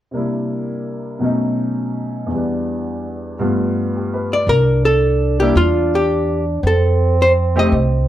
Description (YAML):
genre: jazz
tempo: 111 BPM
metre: 4/4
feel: swing 69% on 8ths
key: C major, C mixolydian from 4.5 s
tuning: A4 = 440 Hz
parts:
  - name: warm baby grand piano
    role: accompaniment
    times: 0.1-7.7 s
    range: E2 to D5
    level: -19 LUFS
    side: left 1 dB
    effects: none
  - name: archtop guitar, miked and amplified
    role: melody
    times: 4.3-8.1 s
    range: F4 to Eb5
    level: -17 LUFS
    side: left 1 dB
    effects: none
  - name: trombone with cup mute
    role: second line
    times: 4.5-8.1 s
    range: C4 to D4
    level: -21 LUFS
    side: right 4 dB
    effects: none
  - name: upright bass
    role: bass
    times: 4.5-8.1 s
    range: C2 to F2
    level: -17 LUFS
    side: equal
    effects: none
room: moderate club reverb, RT60 0.8 s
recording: none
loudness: -15 LUFS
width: side -12 dB against mid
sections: 0.1-4.5 A section; 4.5-8.1 B section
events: none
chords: 0.1 C7; 1.2 B7; 2.3 Em7; 3.4 G7; 4.5 Cadd9; 6.6 F7